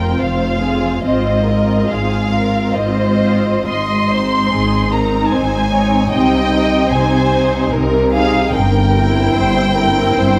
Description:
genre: classical, slow romantic movement for string orchestra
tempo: 62-76 BPM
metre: 3/4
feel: rubato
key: F minor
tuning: A4 = 440 Hz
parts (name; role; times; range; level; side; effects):
- dark studio violin section; melody; 0.0-10.4 s; Eb5 to C6; -21 LUFS; equal; none
- warm studio violin section; second line; 0.0-10.4 s; Ab4 to Eb5; -23 LUFS; equal; none
- warm studio viola section; accompaniment; 0.0-10.4 s; C4 to F4; -21 LUFS; equal; none
- rich studio double bass section; bass; 0.0-10.4 s; F1 to C2; -23 LUFS; equal; none
- warm studio cello section; bass; 0.0-10.4 s; F2 to C3; -21 LUFS; equal; none
room: wet recital hall reverb, RT60 1.4 s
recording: none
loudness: -15 LUFS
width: mono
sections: 0.0-10.4 A section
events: none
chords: 0.0 Fm; 1.0 Fm/Ab; 3.7 Ab; 6.1 Ab/C; 8.5 C7/G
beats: 0.19 | 1.04 1.89 2.75 | 3.67 4.53 5.32 | 6.11 6.91 7.71 | 8.53 9.33 10.15

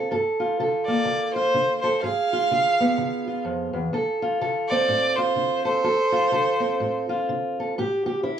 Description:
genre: acoustic country blues, solo or duo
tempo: 126 BPM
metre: 4/4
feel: swing 60% on 8ths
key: D minor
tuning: A4 = 441 Hz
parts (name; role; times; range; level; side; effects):
- fingerpicked steel-string acoustic guitar; accompaniment; 0.0-8.4 s; D2 to A4; -23 LUFS; right 1 dB; none
- rich fiddle; melody; 0.8-7.2 s; C5 to E#5; -23 LUFS; right 2 dB; none
room: wet booth ambience, RT60 0.2 s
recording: small room ambience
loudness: -21 LUFS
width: side -9 dB against mid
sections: 0.0-8.4 A section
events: none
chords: 0.1 Gm9; 2.0 G#dim7; 3.9 Dm7; 7.8 A7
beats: | 0.11 0.58 1.06 1.54 | 2.02 2.50 2.98 3.45 | 3.93 4.41 4.89 5.37 | 5.84 6.32 6.80 7.28 | 7.75 8.23

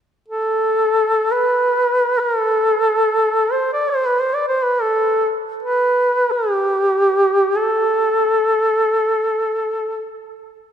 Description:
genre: caucasian folk, Caucasian lament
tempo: free time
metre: none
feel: none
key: A minor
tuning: A4 = 440 Hz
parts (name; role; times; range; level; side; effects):
- warm duduk; solo; 0.3-10.0 s; G4 to D5; -15 LUFS; equal; none
room: moderate church reverb, RT60 2.7 s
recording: minimal, uncompressed stereo recording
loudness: -15 LUFS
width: side -9 dB against mid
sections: 0.0-10.7 A section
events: none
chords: none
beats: free time

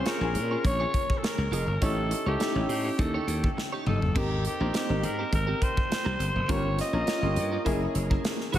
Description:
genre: polished 1980s jazz-funk pop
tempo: 103 BPM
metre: 4/4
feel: swing 54% on 16ths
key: unclear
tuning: A4 = 437 Hz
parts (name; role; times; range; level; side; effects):
- growling alto saxophone; melody; 0.0-8.6 s; Gb4 to Eb5; -31 LUFS; equal; tape echo
- clear grand piano; accompaniment; 0.0-8.6 s; Bb3 to Bb4; -32 LUFS; left 1 dB; analog chorus
- clean electric guitar; riff; 0.0-8.6 s; C4 to Eb5; -36 LUFS; right 4 dB; analog chorus
- modern studio drum kit; drums; 0.1-8.6 s; crash cymbal, hi-hat, kick drum, snare drum, toms; -30 LUFS; equal; none
- glassy slap bass; bass; 0.2-8.6 s; F1 to Bb2; -29 LUFS; equal; none
room: light reverb, studio reverb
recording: none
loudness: -25 LUFS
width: side -12 dB against mid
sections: 0.0-8.6 A section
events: drum fill 3.6-4.2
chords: 0.0 Bbm7; 1.8 A7#11; 4.2 Abmaj9; 6.5 Gm7b5; 7.7 Gb9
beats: 0.06 0.65 1.23 | 1.82 2.40 2.99 3.57 | 4.16 4.74 5.33 5.91 | 6.49 7.08 7.66 8.25

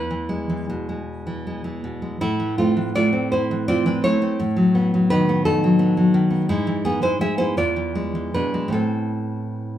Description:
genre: romantic piece for solo classical guitar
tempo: 50-58 BPM (dotted quarters)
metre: 6/8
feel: rubato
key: A minor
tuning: A4 = 435 Hz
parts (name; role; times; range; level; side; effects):
- nylon-string guitar; solo; 0.0-9.8 s; E2 to E5; -19 LUFS; equal; none
room: wet large studio reverb, RT60 0.8 s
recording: band playing live in one room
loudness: -19 LUFS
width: side -11 dB against mid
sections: 0.0-9.8 A section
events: none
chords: 0.0 E; 2.2 Am; 4.4 B7/A; 6.5 E/G#; 7.6 E7b9; 8.7 Am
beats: 1.04 | 2.19 3.31 | 4.38 5.43 | 6.48 7.57 | 8.73

